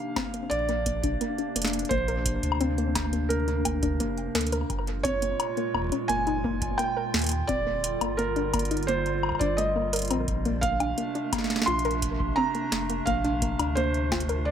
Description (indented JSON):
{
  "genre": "IDM",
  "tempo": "86 BPM",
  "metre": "4/4",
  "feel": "straight",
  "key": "Bb major",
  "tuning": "A4 = 440 Hz",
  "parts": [
    { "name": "felt-muted upright piano", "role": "melody", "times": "0.0-14.5 s", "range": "Bb4 to C6", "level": "-30 LUFS", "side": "right 2 dB", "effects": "dub echo" },
    { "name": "warbly tape-like pad", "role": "sustained chords", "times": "0.0-14.5 s", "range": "Bb2 to F4", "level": "-32 LUFS", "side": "right 1 dB", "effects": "chorus, built-in reverb" },
    { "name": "soft round pluck", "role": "arpeggios", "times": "0.2-14.4 s", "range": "A3 to Bb4", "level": "-32 LUFS", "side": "left 3 dB", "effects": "chorus, analog delay" },
    { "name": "booming analog drum machine", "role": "drums", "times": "0.2-14.4 s", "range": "hi-hat, snare drum, woodblock", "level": "-30 LUFS", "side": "left 1 dB", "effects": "overdrive, dub echo" },
    { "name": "electronic kick drum", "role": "drums", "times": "0.2-14.3 s", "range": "none", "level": "-34 LUFS", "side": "equal", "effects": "overdrive" },
    { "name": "warm sub bass", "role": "bass", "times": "0.5-14.5 s", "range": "Eb1 to Eb2", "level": "-31 LUFS", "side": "equal", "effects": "none" }
  ],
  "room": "light reverb, digital ambience",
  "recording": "echo-heavy mix",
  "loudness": "-24 LUFS",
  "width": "side -9 dB against mid",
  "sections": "0.0-14.5 A section",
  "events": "none",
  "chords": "0.0 Bbadd9; 4.7 Gbmaj9; 7.1 Ebmaj9; 10.3 Bbmaj9"
}